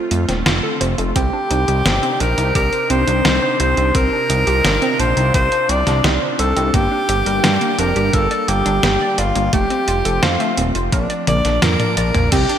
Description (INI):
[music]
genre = synthwave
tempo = 86 BPM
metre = 4/4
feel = straight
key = C dorian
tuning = A4 = 440 Hz
[part]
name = phased analog pad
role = sustained chords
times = 0.0-12.6 s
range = C3 to G4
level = -25 LUFS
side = equal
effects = phaser, chorus, sidechain pumping
[part]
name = analog pluck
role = arpeggios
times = 0.0-12.6 s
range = A3 to D5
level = -24 LUFS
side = right 3 dB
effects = chorus, digital delay
[part]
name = fat analog bass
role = bass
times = 0.1-12.5 s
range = Eb1 to G2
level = -19 LUFS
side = equal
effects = none
[part]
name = detuned 8-bit digital drum machine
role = drums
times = 0.1-12.6 s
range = cabasa, crash cymbal, hi-hat, snare drum, toms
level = -20 LUFS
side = equal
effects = gated reverb
[part]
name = breathy tenor saxophone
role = melody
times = 1.2-12.6 s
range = D4 to D5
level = -18 LUFS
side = equal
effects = ping-pong delay
[part]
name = electronic kick drum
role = drums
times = 1.2-12.5 s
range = none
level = -20 LUFS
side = equal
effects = none
[part]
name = FM electric piano with soft pad layer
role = second line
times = 12.3-12.6 s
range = G4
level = -21 LUFS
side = left 2 dB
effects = chorus
[sound]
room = moderate lush hall reverb, RT60 2.8 s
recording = bright 1980s-style digital production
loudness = -14 LUFS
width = side -9 dB against mid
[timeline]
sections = 0.0-12.3 A section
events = drum fill 11.3-12.3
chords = 0.0 F; 1.2 Cmadd9; 6.7 Gm; 9.5 F; 10.9 Bb